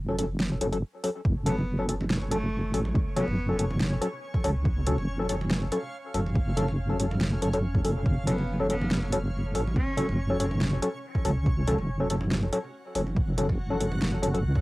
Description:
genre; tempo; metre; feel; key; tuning
deep dubstep; 141 BPM; 4/4; swing 53% on 16ths, half-time; F# harmonic minor; A4 = 438 Hz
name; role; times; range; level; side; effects
deep soft wobble bass; bass; 0.0-14.6 s; F#1 to C#2; -28 LUFS; equal; chorus
percussive organ stab; stabs; 0.1-14.4 s; F#3 to A4; -29 LUFS; left 1 dB; analog chorus, cassette tape, dub echo
deep house drum kit; drums; 0.2-14.4 s; hi-hat, snare drum; -30 LUFS; equal; overdrive, studio reverb, cassette tape
electronic kick drum; drums; 1.2-14.6 s; none; -28 LUFS; equal; overdrive, studio reverb, cassette tape
backwards swelling texture; texture; 1.8-14.6 s; C#4 to E#5; -41 LUFS; equal; built-in reverb, cassette tape
bright cello; melody; 1.5-3.6, 8.3-10.2 s; A3 to C#4; -38 LUFS; equal; vintage 12-bit sampler grit, cassette tape, dub echo
congas; percussion; 1.5-14.6 s; none; -35 LUFS; right 1 dB; dub echo
room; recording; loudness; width
light reverb; home recording on cassette; -25 LUFS; side -20 dB against mid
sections
0.0-14.6 A section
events
break 0.8-1.2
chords
0.0 F#m

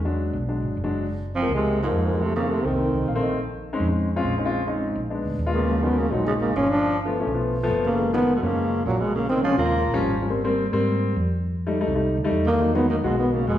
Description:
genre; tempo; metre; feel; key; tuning
jazz; 208 BPM; 4/4; straight; Bb minor, Eb minor from 5.7 s; A4 = 440 Hz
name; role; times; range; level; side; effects
dark grand piano; accompaniment; 0.0-13.4 s; Db3 to F5; -25 LUFS; left 2 dB; none
hollow-body short-scale fingered electric bass; bass; 0.0-13.6 s; F1 to Ab2; -27 LUFS; equal; none
mellow trombone; melody; 1.4-3.2, 5.5-10.1, 12.5-13.6 s; F3 to F4; -24 LUFS; equal; none
growling tenor saxophone; second line; 1.4-3.2, 5.5-10.1, 12.5-13.6 s; Ab2 to Bb3; -28 LUFS; right 3 dB; none
room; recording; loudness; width
wet recital hall reverb, RT60 1.5 s; recorded in a church or concert hall; -21 LUFS; side -11 dB against mid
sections
0.0-5.7 A section; 5.7-13.6 B section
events
grand piano fill 2.9-3.4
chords
0.0 E9; 1.1 Gbmaj9; 2.2 F7; 3.4 Bbm11; 5.1 Bb7b9; 5.7 Ebm11; 6.8 G9; 8.0 Gbmaj9; 9.1 Bbm7; 9.7 Eb9; 10.3 Abmaj9; 11.5 F9; 12.6 Emaj9

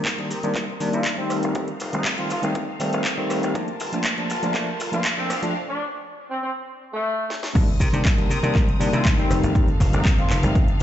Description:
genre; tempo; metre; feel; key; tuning
filtered disco house; 120 BPM; 4/4; straight; C dorian; A4 = 440 Hz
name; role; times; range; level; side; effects
bright tine electric piano; accompaniment; 0.0-10.8 s; Eb3 to D4; -25 LUFS; left 1 dB; phaser, sidechain pumping, low-pass filter
bright symphonic string section; sustained chords; 0.0-10.8 s; C4 to Eb6; -32 LUFS; left 1 dB; vintage 12-bit sampler grit, sidechain pumping, low-pass filter
dry thumbed slap bass; bass; 0.0-10.8 s; F1 to C3; -27 LUFS; equal; sidechain pumping, high-pass filter, low-pass filter
electronic kick drum; drums; 0.1-10.7 s; none; -21 LUFS; equal; overdrive, high-pass filter on kick, high-pass filter on room
house drum kit; drums; 0.1-10.8 s; crash cymbal, handclaps, hi-hat, rim click, shaker, snare drum; -28 LUFS; equal; overdrive, high-pass filter on snare, sidechain pumping on hats, high-pass filter on hats, sidechain pumping on perc, high-pass filter on perc, sidechain pumping on cymbals, high-pass filter on cymbals, high-pass filter on room
mellow horn section; melody; 0.9-10.4 s; A3 to F4; -29 LUFS; equal; sidechain pumping, low-pass filter, tape echo
egg shaker; percussion; 7.6-10.8 s; none; -50 LUFS; right 12 dB; none
room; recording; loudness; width
light reverb, digital ambience; played on a big sound system in a bare room, large studio reverb, nothing above 7.9 kHz; -20 LUFS; side -11 dB against mid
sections
0.0-7.6 A section; 7.6-10.8 B section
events
build-up 0.0-7.6; filter sweep 0.0-7.6; break 5.6-7.6; drum fill 7.3; drop 7.6-10.8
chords
0.0 Cm7; 1.3 F7; 3.6 Gm9; 5.3 Dm7; 7.6 Cm7; 9.3 F7

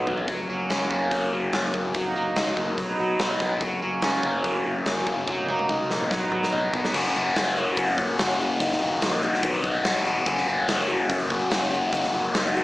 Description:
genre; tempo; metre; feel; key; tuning
indie rock; 144 BPM; 4/4; straight; F# major; A4 = 440 Hz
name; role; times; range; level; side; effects
crunchy overdriven guitar; riff; 0.0-12.6 s; D#3 to F#4; -24 LUFS; left 1 dB; phaser, slapback echo
twangy electric guitar; riff; 0.0-7.0 s; F#3 to F#4; -29 LUFS; right 2 dB; lush chorus, tape echo, slapback echo
fingered electric bass; bass; 0.1-12.6 s; E1 to C#2; -38 LUFS; equal; none
big rock drum kit; drums; 0.1-12.4 s; crash cymbal, hi-hat, kick drum, snare drum, toms; -28 LUFS; equal; none
egg shaker; percussion; 6.9-12.6 s; none; -53 LUFS; right 3 dB; none
room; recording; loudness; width
moderate lush hall reverb, RT60 1.8 s, small room ambience; big arena sound, small speaker sound; -22 LUFS; side -17 dB against mid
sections
0.3-6.9 A section; 6.9-12.6 B section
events
drum fill 0.0, 5.3-6.9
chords
0.3 F#; 1.9 D#m/F#; 2.8 B; 3.6 F#; 5.3 D#m/F#; 6.1 B; 6.9 F#; 8.6 D#m/F#; 9.4 B; 10.3 F#; 11.9 D#m/F#

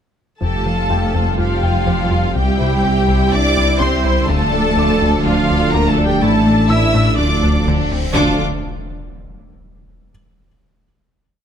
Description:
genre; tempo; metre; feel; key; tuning
cinematic, hybrid orchestral and electronic film score; 124 BPM; 4/4; straight; D minor; A4 = 440 Hz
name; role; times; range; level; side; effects
warm symphonic violin section; melody; 0.4-8.4 s; F5 to E6; -22 LUFS; left 1 dB; none
rich symphonic violin section; second line; 0.4-8.4 s; A3 to C5; -26 LUFS; left 2 dB; none
rich studio viola section; accompaniment; 0.4-8.4 s; D4 to E5; -23 LUFS; right 1 dB; none
mellow French horn section; sustained chords; 0.4-8.3 s; E3 to F4; -25 LUFS; left 6 dB; none
warm analog pad; sustained chords; 0.4-8.4 s; E3 to F5; -24 LUFS; right 1 dB; chorus
tight sequenced synth; arpeggios; 0.4-8.1 s; C3 to A4; -28 LUFS; right 1 dB; none
rubbery square bass; riff; 0.4-8.1 s; C2 to A3; -21 LUFS; left 2 dB; none
dark tuba; bass; 0.4-8.4 s; F1 to D2; -23 LUFS; right 4 dB; none
rich symphonic cello section; bass; 0.4-8.4 s; F3 to E4; -22 LUFS; right 1 dB; none
rich symphonic double bass section; bass; 0.4-8.4 s; A1 to F2; -24 LUFS; right 2 dB; none
sub bass with octave; bass; 0.4-8.4 s; D1 to C2; -24 LUFS; equal; none
bright concert grand piano; texture; 0.9-8.2 s; G4 to E6; -29 LUFS; left 4 dB; none
reverse cymbal and impact; sound effects; 7.6-10.1 s; none; -30 LUFS; equal; none
room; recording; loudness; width
moderate recital hall reverb, RT60 1.6 s; none; -13 LUFS; side -8 dB against mid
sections
0.4-8.2 theme; 8.2-10.1 final chord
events
reverse cymbal 7.6-8.2; impact 8.2-10.1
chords
0.4 Fadd9; 2.3 C; 4.3 Dm; 6.2 Asus4; 7.2 Dm

